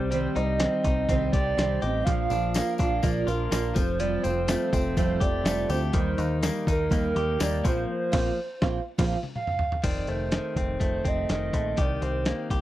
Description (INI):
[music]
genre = jangly indie pop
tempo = 124 BPM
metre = 4/4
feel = straight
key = Bb major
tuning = A4 = 438 Hz
[part]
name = hollow clarinet-like synth lead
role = melody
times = 0.0-12.5 s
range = Bb4 to F5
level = -30 LUFS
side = right 3 dB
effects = chorus, slapback echo
[part]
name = fingerpicked twelve-string acoustic guitar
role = accompaniment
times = 0.0-9.2 s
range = Bb2 to Bb4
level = -31 LUFS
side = right 5 dB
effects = none
[part]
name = direct-recorded clean electric guitar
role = arpeggios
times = 0.0-12.6 s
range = Eb3 to G4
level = -31 LUFS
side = left 5 dB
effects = none
[part]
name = deep dub picked electric bass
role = bass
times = 0.0-12.6 s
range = F1 to Eb2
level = -30 LUFS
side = equal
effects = none
[part]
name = dusty soul sampler-style drum kit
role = drums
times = 0.1-12.6 s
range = crash cymbal, hi-hat, kick drum, snare drum, toms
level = -27 LUFS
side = equal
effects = none
[part]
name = tambourine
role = percussion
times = 2.3-7.8 s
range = none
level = -43 LUFS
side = left 8 dB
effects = none
[sound]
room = little or no reverb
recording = dry, close 1970s-style studio recording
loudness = -23 LUFS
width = side -14 dB against mid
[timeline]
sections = 0.0-9.8 A section; 9.8-12.6 B section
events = band accent 7.9-9.8; drum fill 8.9-9.8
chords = 0.0 Cm; 2.1 Bb; 3.8 Fadd9; 6.0 Eb; 7.7 Bbsus2; 9.8 F7; 11.8 Cm7